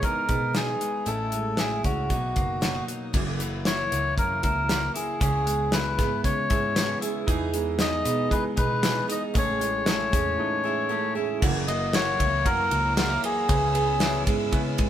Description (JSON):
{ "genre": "jangly indie pop", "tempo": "116 BPM", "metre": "4/4", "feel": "straight", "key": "F# mixolydian", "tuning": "A4 = 441 Hz", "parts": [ { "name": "melodica", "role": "melody", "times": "0.0-14.2 s", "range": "F#4 to D#5", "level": "-26 LUFS", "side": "left 2 dB", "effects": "none" }, { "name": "picked steel-string acoustic guitar", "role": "accompaniment", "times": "0.0-14.9 s", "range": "F#2 to G#4", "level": "-32 LUFS", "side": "right 7 dB", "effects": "none" }, { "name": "direct-recorded clean electric guitar", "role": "arpeggios", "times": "0.0-14.9 s", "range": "F#2 to E4", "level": "-33 LUFS", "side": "left 3 dB", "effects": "spring reverb" }, { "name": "vintage muted picked electric bass", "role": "bass", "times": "0.0-14.9 s", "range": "F#1 to E3", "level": "-31 LUFS", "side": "equal", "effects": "none" }, { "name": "modern studio drum kit", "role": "drums", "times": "0.0-14.9 s", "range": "crash cymbal, hi-hat, kick drum, ride cymbal, snare drum", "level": "-27 LUFS", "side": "equal", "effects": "none" }, { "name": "clear upright piano", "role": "accompaniment", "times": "7.3-14.9 s", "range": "A3 to B4", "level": "-34 LUFS", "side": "right 4 dB", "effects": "none" }, { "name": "clear studio string section", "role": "sustained chords", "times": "11.4-14.9 s", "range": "C#5 to E6", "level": "-38 LUFS", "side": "left 2 dB", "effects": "none" } ], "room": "moderate stone room reverb, RT60 1.2 s", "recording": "band playing live in one room", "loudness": "-22 LUFS", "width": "side -10 dB against mid", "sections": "0.0-3.1 A section; 3.1-11.4 B section; 11.4-14.9 C section", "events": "none", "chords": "0.0 Emaj7; 1.1 Amaj7; 2.1 Bmaj7; 3.1 F#7; 5.2 C#m7; 7.3 Emaj7; 9.4 Amaj7; 11.4 F#7; 13.5 C#m7", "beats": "0.03 0.55 | 1.07 1.58 2.10 2.62 | 3.14 3.66 4.18 4.69 | 5.21 5.73 6.25 6.76 | 7.28 7.80 8.32 8.84 | 9.35 9.87 10.39 10.90 | 11.42 11.94 12.46 12.97 | 13.49 14.01 14.53" }